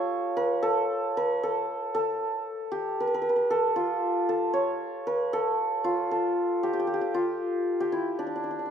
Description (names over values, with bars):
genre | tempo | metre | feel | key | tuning
persian | 76 BPM (dotted quarters) | 6/8 | straight | unclear | A4 = 441 Hz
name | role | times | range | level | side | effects
santur | solo | 0.0-8.7 s | D4 to C#5 | -25 LUFS | equal | none
room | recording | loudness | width
moderate recital hall reverb, RT60 1.6 s | minimal, uncompressed stereo recording | -25 LUFS | side -8 dB against mid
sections
0.0-8.7 A section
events
none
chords
none